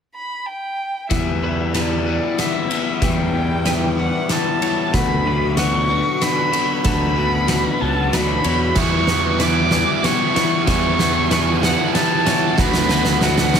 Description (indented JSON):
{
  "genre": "post-rock",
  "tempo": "94 BPM",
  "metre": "3/4",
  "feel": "straight",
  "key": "E dorian",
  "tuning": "A4 = 441 Hz",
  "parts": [
    { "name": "muted violin", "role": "melody", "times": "0.2-13.6 s", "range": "D5 to D6", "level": "-22 LUFS", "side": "right 1 dB", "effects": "digital delay" },
    { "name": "icy glass pad", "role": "sustained chords", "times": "2.1-13.6 s", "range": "D4 to B5", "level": "-34 LUFS", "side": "right 3 dB", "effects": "none" },
    { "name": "electric guitar through a small old amp", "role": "arpeggios", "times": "1.1-13.6 s", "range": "E2 to F#4", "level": "-30 LUFS", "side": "left 3 dB", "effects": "digital delay" },
    { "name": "overdriven electric guitar", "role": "riff", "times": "1.1-13.6 s", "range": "D3 to F#4", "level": "-23 LUFS", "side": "left 9 dB", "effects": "phaser" },
    { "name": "fuzz fingered electric bass", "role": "bass", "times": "1.1-13.6 s", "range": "C#2 to E2", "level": "-22 LUFS", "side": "right 1 dB", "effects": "overdrive" },
    { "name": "oversized low-tuned drum kit", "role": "drums", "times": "1.1-13.6 s", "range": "crash cymbal, kick drum, ride cymbal, snare drum", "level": "-21 LUFS", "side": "right 1 dB", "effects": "none" },
    { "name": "twelve-string electric guitar", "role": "arpeggios", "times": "1.4-13.6 s", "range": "A4 to C#5", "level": "-32 LUFS", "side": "right 5 dB", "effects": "digital delay" },
    { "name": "distorted electric guitar", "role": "riff", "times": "8.8-13.6 s", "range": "D3 to F#4", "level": "-22 LUFS", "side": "right 15 dB", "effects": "overdrive" }
  ],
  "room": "light reverb, small room ambience",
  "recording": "none",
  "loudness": "-16 LUFS",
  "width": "side -7 dB against mid",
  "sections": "0.0-1.1 A section; 1.1-13.6 B section",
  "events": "build-up 1.1-13.6; drum fill 1.1-13.6",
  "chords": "0.0 N.C.; 1.1 Em; 4.9 Bm/D; 8.8 Emadd9; 12.6 Bm/D"
}